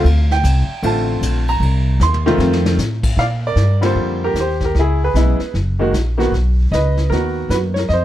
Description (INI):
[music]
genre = jazz piano trio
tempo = 153 BPM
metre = 4/4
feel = swing 64% on 8ths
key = Bb major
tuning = A4 = 440 Hz
[part]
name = bright upright piano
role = melody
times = 0.0-8.0 s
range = Db3 to C6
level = -18 LUFS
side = equal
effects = none
[part]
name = upright bass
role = bass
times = 0.0-8.0 s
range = Gb1 to Bb2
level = -16 LUFS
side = equal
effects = none
[part]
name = vintage brush drum kit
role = drums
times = 0.1-8.0 s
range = brushed snare drum, crash cymbal, hi-hat, kick drum, ride cymbal, snare drum, toms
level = -25 LUFS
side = left 1 dB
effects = none
[sound]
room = light reverb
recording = dark, warm production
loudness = -14 LUFS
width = side -13 dB against mid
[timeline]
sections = 0.0-3.2 A section; 3.2-8.0 B section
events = upright piano solo 0.0-3.2; drum fill 2.0-2.8; band accent 3.8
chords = 0.0 Dm7; 1.6 Cm7; 2.4 F7; 3.2 Bb6; 4.8 Dbm7; 5.5 Gb6; 6.3 Bmaj7